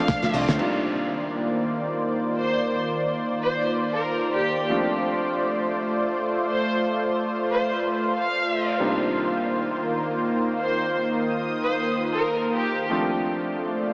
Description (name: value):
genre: nu-disco, nu disco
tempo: 117 BPM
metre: 4/4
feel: swing 56% on 16ths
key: C dorian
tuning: A4 = 440 Hz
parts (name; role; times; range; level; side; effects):
- warm studio violin section; melody; 0.0-12.9 s; G4 to F5; -30 LUFS; equal; analog delay
- clear electric grand piano; accompaniment; 0.0-13.9 s; C3 to F4; -32 LUFS; equal; sidechain pumping, tape echo
- lush unison pad; sustained chords; 0.0-13.9 s; Eb3 to Eb6; -27 LUFS; equal; chorus, sidechain pumping
- damped 70s drum kit; drums; 0.1-0.7 s; crash cymbal, hi-hat, snare drum; -32 LUFS; equal; studio reverb
- tube shaker and congas; percussion; 0.1-0.6 s; none; -37 LUFS; equal; none
- fingered electric bass with an envelope filter; bass; 0.3-0.6 s; C2 to D2; -31 LUFS; equal; none
room: wet huge ambient reverb, RT60 4.0 s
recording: dreamy mix soaked in reverb, small speaker sound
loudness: -25 LUFS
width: mono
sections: 0.6-13.9 A section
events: drum fill 0.2-0.6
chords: 0.0 Dm7; 0.6 Cm11; 4.7 Dm7; 8.8 Cm11; 12.9 Dm7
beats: 0.08 | 0.60 1.11 1.62 2.14 | 2.65 3.16 3.67 4.19 | 4.70 5.21 5.72 6.24 | 6.75 7.26 7.78 8.29 | 8.80 9.31 9.83 10.34 | 10.85 11.37 11.88 12.39 | 12.90 13.42 13.93